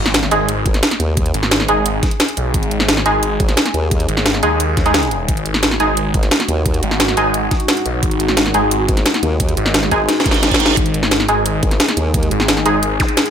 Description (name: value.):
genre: dark technical drum and bass.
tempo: 175 BPM.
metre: 4/4.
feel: straight.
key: unclear.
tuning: A4 = 440 Hz.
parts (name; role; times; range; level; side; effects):
dark analog pad; sustained chords; 1.1-13.3 s; G#3 to G#4; -23 LUFS; left 1 dB; chorus, phaser, sidechain pumping.
phased detuned saw bass; bass; 0.0-13.0 s; G#1 to D#2; -19 LUFS; equal; phaser, overdrive.
impact, reverse cymbal and zap; sound effects; 0.0-1.2, 10.2-10.8, 13.0-13.1 s; none; -22 LUFS; right 5 dB; none.
drum and bass drum kit; drums; 0.1-13.3 s; hi-hat, snare drum; -16 LUFS; equal; overdrive, studio reverb.
orchestra-hit-like synth stab; stabs; 0.3-12.7 s; G#3 to G#4; -19 LUFS; right 1 dB; built-in reverb, cassette tape, dub echo.
formant-sweep wobble bass; bass; 0.7-1.3, 3.4-4.1, 6.1-6.8, 8.9-12.3 s; G#1 to D#2; -18 LUFS; equal; chorus.
electronic kick drum; drums; 0.7-13.1 s; none; -18 LUFS; equal; overdrive, studio reverb.
room: light reverb.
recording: none.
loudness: -13 LUFS.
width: side -8 dB against mid.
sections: 0.0-13.3 A section.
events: impact 0.0-1.2; drum fill 10.1-10.8; reverse cymbal 10.2-10.8.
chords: 0.0 G#5.